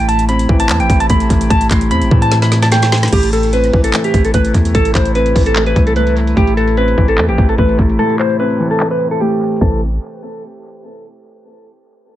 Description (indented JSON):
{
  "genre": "hip hop, trap",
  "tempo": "148 BPM",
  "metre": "4/4",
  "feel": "half-time",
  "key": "A minor",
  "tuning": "A4 = 442 Hz",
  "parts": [
    { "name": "clean electric guitar", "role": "melody", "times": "0.0-9.8 s", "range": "G4 to C6", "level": "-17 LUFS", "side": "equal", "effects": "wide subtle chorus, low-pass filter, dub echo" },
    { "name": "dark grand piano", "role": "accompaniment", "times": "0.0-9.8 s", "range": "A2 to C4", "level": "-18 LUFS", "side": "left 1 dB", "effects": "low-pass filter, dub echo" },
    { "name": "warm woodwind section", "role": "sustained chords", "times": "0.0-9.8 s", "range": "C3 to E4", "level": "-24 LUFS", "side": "equal", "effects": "none" },
    { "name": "long sustained 808-style bass", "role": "bass", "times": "0.0-10.0 s", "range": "A1 to A2", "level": "-16 LUFS", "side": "equal", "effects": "none" },
    { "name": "trap drum kit", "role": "drums", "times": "0.1-9.7 s", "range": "crash cymbal, handclaps, hi-hat, kick drum, snare drum", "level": "-15 LUFS", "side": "equal", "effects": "vintage 12-bit sampler grit" }
  ],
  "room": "little or no reverb",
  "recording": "echo-heavy mix, low-pass filter",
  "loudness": "-11 LUFS",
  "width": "side -13 dB against mid",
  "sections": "0.0-3.1 A section; 3.1-9.6 B section; 9.6-11.2 C section",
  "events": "drum fill 2.3-3.1; filter sweep 3.1-9.6; break 8.0-9.6",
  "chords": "0.0 Am",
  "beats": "0.29 0.69 1.10 | 1.50 1.91 2.31 2.72 | 3.13 3.53 3.94 4.34 | 4.75 5.15 5.56 5.96 | 6.37 6.77 7.18 7.58 | 7.99 8.40 8.80 9.21 | 9.61"
}